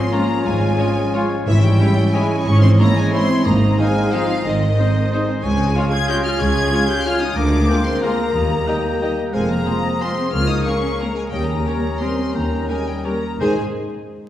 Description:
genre	classical, orchestral ballroom waltz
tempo	162-200 BPM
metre	3/4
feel	rubato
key	Ab major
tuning	A4 = 440 Hz
part	rich studio violin section	melody	0.0-13.6 s	Eb5 to Ab6	-28 LUFS	left 3 dB	none
part	concert flute	second line	0.0-13.6 s	Eb5 to Ab6	-29 LUFS	left 1 dB	none
part	dark clarinet	second line	0.0-13.6 s	Eb4 to Ab4	-28 LUFS	left 1 dB	none
part	warm oboe	second line	0.0-13.5 s	C5 to Bb5	-31 LUFS	equal	none
part	dark studio viola section	accompaniment	0.0-13.6 s	Eb3 to Ab4	-24 LUFS	right 1 dB	none
part	mellow bassoon	accompaniment	0.0-13.6 s	Eb3 to Db4	-27 LUFS	left 1 dB	none
part	concert harp	arpeggios	0.0-13.6 s	Ab2 to Bb5	-28 LUFS	left 4 dB	none
part	warm studio violin section	second line	0.1-13.6 s	Eb4 to Eb5	-34 LUFS	left 2 dB	none
part	mellow French horn section	sustained chords	0.1-13.6 s	G3 to Eb4	-27 LUFS	left 1 dB	none
part	dark trumpet section	stabs	0.1-13.6 s	Eb4 to C5	-30 LUFS	right 1 dB	none
part	clear studio cello section	bass	0.5-13.6 s	Db2 to Ab2	-22 LUFS	right 1 dB	none
part	warm studio double bass section	bass	0.5-13.6 s	F1 to Eb2	-23 LUFS	right 1 dB	none
part	timpani	percussion	1.5-3.9 s	Ab2	-22 LUFS	equal	none
room	wet scoring stage reverb, RT60 1.8 s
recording	heard from further back in the room, vinyl crackle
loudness	-16 LUFS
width	side -12 dB against mid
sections	0.0-13.4 A section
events	none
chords	0.0 Db/Ab; 1.5 Dbm/Ab; 3.5 Ab; 5.4 Db; 7.4 Bb7/D; 8.3 Eb; 9.3 Fm; 10.3 Bbm7/Db; 11.3 Eb7; 13.4 Ab

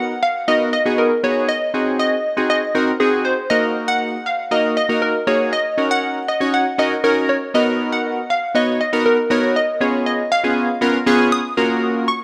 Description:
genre	pop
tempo	119 BPM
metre	4/4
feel	straight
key	F# major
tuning	A4 = 439 Hz
part	glassy wavetable pluck	melody	0.0-12.2 s	G#4 to D#6	-21 LUFS	equal	chorus, dub echo
part	warm analog keys	accompaniment	0.0-12.1 s	A#3 to C#5	-21 LUFS	equal	chorus
room	light reverb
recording	none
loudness	-18 LUFS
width	mono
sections	0.0-11.6 A section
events	none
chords	0.0 Bmaj7; 1.5 G#7/B#; 3.5 D#m; 5.5 F#6; 7.5 Bmaj7; 9.6 C#7; 11.6 F#maj7

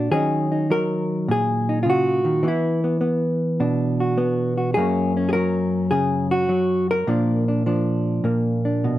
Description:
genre	solo jazz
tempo	103 BPM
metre	4/4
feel	swing 67% on 8ths, rubato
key	Eb minor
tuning	A4 = 438 Hz
part	hollow-body jazz guitar	solo	0.0-9.0 s	Gb2 to Bb4	-19 LUFS	equal	none
room	moderate studio reverb, RT60 0.7 s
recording	minimal, uncompressed stereo recording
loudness	-19 LUFS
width	side -14 dB against mid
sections	0.1-9.0 A section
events	none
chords	0.1 Ebm7; 2.4 Esus2; 4.8 Gb; 7.1 Bb

